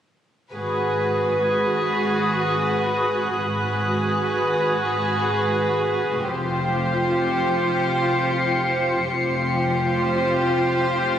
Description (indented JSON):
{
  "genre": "cinematic, suspense film score",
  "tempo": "84 BPM",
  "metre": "4/4",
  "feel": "straight",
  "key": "G# dorian",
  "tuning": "A4 = 440 Hz",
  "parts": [
    { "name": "rich studio violin section", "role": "melody", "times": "0.5-11.2 s", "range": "B4 to C5", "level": "-26 LUFS", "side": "equal", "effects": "none" },
    { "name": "dark studio violin section", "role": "second line", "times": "0.5-11.2 s", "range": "G4 to G#4", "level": "-25 LUFS", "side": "equal", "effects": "none" },
    { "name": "dark symphonic viola section", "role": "accompaniment", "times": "0.5-11.2 s", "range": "F4 to F#4", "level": "-26 LUFS", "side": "right 2 dB", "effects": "none" },
    { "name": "dark symphonic double bass section", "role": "bass", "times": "0.5-11.2 s", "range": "F1 to G#1", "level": "-29 LUFS", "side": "equal", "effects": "none" },
    { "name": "rich chamber cello section", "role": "bass", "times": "0.5-11.2 s", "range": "F2 to G#2", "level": "-30 LUFS", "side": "right 1 dB", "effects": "none" },
    { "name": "warm symphonic violin section", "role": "texture", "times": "0.5-11.2 s", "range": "B5 to C#7", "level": "-29 LUFS", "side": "left 3 dB", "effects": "none" }
  ],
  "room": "moderate scoring stage reverb, RT60 2.1 s",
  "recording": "recorded on a phone in the room, club reverb, compression",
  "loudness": "-19 LUFS",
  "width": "side -9 dB against mid",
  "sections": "0.5-11.2 A section",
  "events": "none",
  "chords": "0.5 G#m7; 6.3 Fsus2"
}